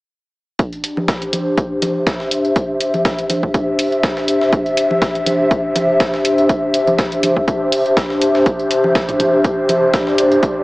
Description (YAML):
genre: minimal techno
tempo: 122 BPM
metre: 4/4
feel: swing 55% on 16ths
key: unclear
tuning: A4 = 441 Hz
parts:
  - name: breakbeat sampler-style drum kit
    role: drums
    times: 0.6-10.6 s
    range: hi-hat, snare drum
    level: -26 LUFS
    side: equal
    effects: high-pass filter on hats, high-pass filter on snare, high-pass filter on room
  - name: electronic kick drum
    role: drums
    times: 0.6-10.5 s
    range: none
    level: -19 LUFS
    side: equal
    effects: none
  - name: airy breathy pad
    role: texture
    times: 0.6-10.6 s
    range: D4 to E5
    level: -15 LUFS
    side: equal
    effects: chorus, sidechain pumping
  - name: electronic hi-hat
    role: drums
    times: 0.8-10.3 s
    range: none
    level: -22 LUFS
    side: equal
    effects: none
  - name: electronic congas and toms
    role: percussion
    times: 1.0-9.8 s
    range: none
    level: -26 LUFS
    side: equal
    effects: tape echo
room: wet lush hall reverb, RT60 1.7 s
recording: dreamy mix soaked in reverb, small speaker sound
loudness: -14 LUFS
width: side -19 dB against mid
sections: 0.6-10.6 A section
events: none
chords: 0.6 D5